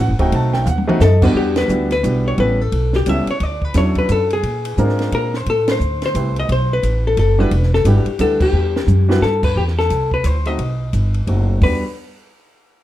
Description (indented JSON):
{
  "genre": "jazz, small-group swing and bop",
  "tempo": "175 BPM",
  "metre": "3/4",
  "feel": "swing 62% on 8ths",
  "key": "E minor",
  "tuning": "A4 = 444 Hz",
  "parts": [
    { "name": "warm grand piano", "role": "accompaniment", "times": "0.0-11.8 s", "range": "E2 to A5", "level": "-20 LUFS", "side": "right 1 dB", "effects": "none" },
    { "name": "upright bass", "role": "bass", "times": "0.0-11.8 s", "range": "D1 to A#2", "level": "-17 LUFS", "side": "equal", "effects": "none" },
    { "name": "compact cocktail drum kit", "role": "drums", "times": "0.2-11.7 s", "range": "crash cymbal, hi-hat, kick drum, ride cymbal, snare drum, toms", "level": "-24 LUFS", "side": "equal", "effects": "none" },
    { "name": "vintage hollow-body jazz guitar", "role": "melody", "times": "1.0-11.8 s", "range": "G4 to E5", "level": "-20 LUFS", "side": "left 3 dB", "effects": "plate reverb" }
  ],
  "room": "moderate studio reverb, RT60 0.8 s",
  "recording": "dark, warm production",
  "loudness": "-14 LUFS",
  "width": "side -13 dB against mid",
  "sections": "0.0-1.3 A section; 1.3-9.6 B section; 9.6-11.6 C section; 11.6-12.6 D section",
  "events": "drum fill 0.7-1.0, 8.5-9.2; band accent 1.5, 5.6, 8.4",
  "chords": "0.3 B7b9; 1.3 Em7; 2.4 A7; 3.4 Dmaj9; 4.4 A#9; 5.5 Am7; 6.5 B5; 7.5 Em7; 9.6 C69; 10.6 B7b9; 11.6 Em7"
}